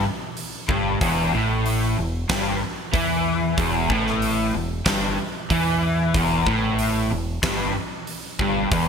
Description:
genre	hard rock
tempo	93 BPM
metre	4/4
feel	straight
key	unclear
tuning	A4 = 442 Hz
part	crunchy overdriven guitar	riff	0.0-8.9 s	E2 to E3	-24 LUFS	left 9 dB	ensemble chorus
part	overdriven semi-hollow guitar	riff	0.0-8.9 s	E2 to E3	-25 LUFS	right 9 dB	analog chorus
part	growling fingered electric bass	bass	0.0-8.9 s	E1 to E2	-28 LUFS	equal	overdrive
part	huge arena drum kit	drums	0.4-8.9 s	hi-hat, kick drum, snare drum	-27 LUFS	right 1 dB	gated reverb
room	light reverb, studio reverb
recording	bright 1980s-style digital production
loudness	-20 LUFS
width	side -6 dB against mid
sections	0.0-8.9 A section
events	none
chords	0.0 Emadd11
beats	0.37 | 1.01 1.65 2.29 2.94 | 3.58 4.22 4.86 5.51 | 6.15 6.79 7.43 8.08 | 8.72

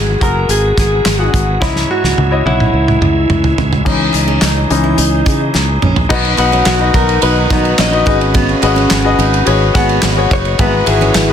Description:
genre	piano-driven pop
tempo	107 BPM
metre	4/4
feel	straight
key	unclear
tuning	A4 = 438 Hz
part	direct-recorded clean electric guitar	melody	0.0-11.3 s	E4 to D#5	-17 LUFS	equal	lush chorus
part	clear concert grand piano	accompaniment	0.0-11.3 s	G#2 to F#5	-16 LUFS	left 5 dB	none
part	bright tonewheel organ	sustained chords	0.0-11.3 s	C#3 to F#4	-24 LUFS	right 2 dB	chorus vibrato, stopped rotary speaker
part	fingered electric bass	bass	0.0-11.3 s	F#1 to C#3	-16 LUFS	equal	none
part	loose indie drum kit	drums	0.2-11.3 s	crash cymbal, handclaps, hi-hat, kick drum, ride cymbal, snare drum, toms	-16 LUFS	right 1 dB	none
part	picked steel-string acoustic guitar	riff	3.9-11.1 s	B3 to E4	-22 LUFS	right 7 dB	none
part	group handclap	percussion	4.1-11.3 s	none	-28 LUFS	left 4 dB	none
part	dark French horn section	second line	6.1-11.3 s	B2 to E4	-20 LUFS	right 3 dB	none
room	moderate large studio reverb, RT60 0.8 s, studio ambience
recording	dense, heavily limited modern master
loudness	-10 LUFS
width	side -8 dB against mid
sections	0.0-3.9 A section; 3.9-6.1 B section; 6.1-11.3 C section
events	drum fill 1.6-3.9, 5.5-6.1; grand piano solo 3.9-6.1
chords	0.0 Eadd9; 1.6 C#madd9; 6.1 B; 8.1 G#m7; 10.6 Eadd9/G#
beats	0.50 1.06 | 1.62 2.18 2.74 3.30 | 3.86 4.42 4.99 5.55 | 6.11 6.67 7.23 7.79 | 8.35 8.91 9.47 10.03 | 10.59 11.15

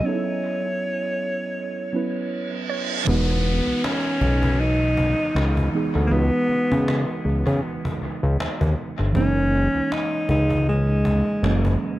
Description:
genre	contemporary R&B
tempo	79 BPM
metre	4/4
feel	swing 58% on 16ths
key	unclear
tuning	A4 = 440 Hz
part	mellow alto saxophone	melody	0.0-11.8 s	G#3 to C#5	-24 LUFS	equal	dub echo
part	muted felt-like synth keys	accompaniment	0.0-12.0 s	E3 to B4	-27 LUFS	right 3 dB	chorus, dub echo
part	reverse cymbal and downlifter	sound effects	2.3-9.2 s	none	-32 LUFS	right 2 dB	none
part	glassy wavetable pluck	texture	2.7-3.4 s	C#5	-34 LUFS	right 6 dB	chorus, dub echo
part	fat analog bass	bass	3.1-11.8 s	E1 to C#3	-21 LUFS	equal	none
part	cajon	drums	3.1-11.8 s	none	-30 LUFS	equal	dub echo
room	light reverb, studio reverb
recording	echo-heavy mix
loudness	-20 LUFS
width	side -15 dB against mid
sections	0.0-3.1 A section; 3.1-12.0 B section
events	break 0.0-3.1; reverse cymbal 2.3-3.1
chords	0.0 B9sus4; 3.1 Emaj9; 6.1 C#m11; 9.1 F#13; 11.4 F#9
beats	| 0.04 0.80 1.55 2.31 | 3.07 3.83 4.59 5.35 | 6.11 6.87 7.63 8.39 | 9.15 9.91 10.67 11.43

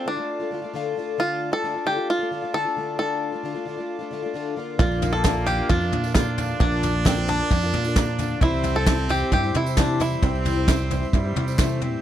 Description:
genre	indie folk with a building arrangement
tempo	133 BPM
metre	4/4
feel	straight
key	D minor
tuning	A4 = 440 Hz
part	bluegrass banjo	melody	0.0-11.6 s	C4 to A4	-26 LUFS	equal	none
part	picked plugged-in twelve-string acoustic guitar	accompaniment	0.0-12.0 s	Bb2 to F4	-30 LUFS	left 6 dB	none
part	pedal harmonium	sustained chords	0.0-12.0 s	F4 to C6	-36 LUFS	right 4 dB	none
part	warm trumpet	second line	4.8-12.0 s	G3 to D4	-30 LUFS	right 4 dB	none
part	clear upright piano	accompaniment	4.8-12.0 s	Bb1 to G5	-33 LUFS	right 6 dB	none
part	fingered electric bass	bass	4.8-12.0 s	Bb1 to C3	-26 LUFS	right 1 dB	none
part	soft brush drum kit	drums	4.8-11.9 s	kick drum, snare drum, toms	-23 LUFS	equal	none
part	tambourine	percussion	4.9-11.8 s	none	-42 LUFS	right 12 dB	none
part	group handclap	percussion	5.2-11.7 s	none	-34 LUFS	left 3 dB	none
room	little or no reverb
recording	none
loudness	-20 LUFS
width	side -11 dB against mid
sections	0.0-12.0 A section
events	none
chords	0.0 Dm; 4.6 Bb; 8.4 C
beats	0.28 0.74 | 1.19 1.64 2.09 2.54 | 2.99 3.44 3.90 4.35 | 4.80 5.25 5.70 6.15 | 6.61 7.06 7.51 7.96 | 8.41 8.87 9.32 9.77 | 10.22 10.68 11.13 11.59

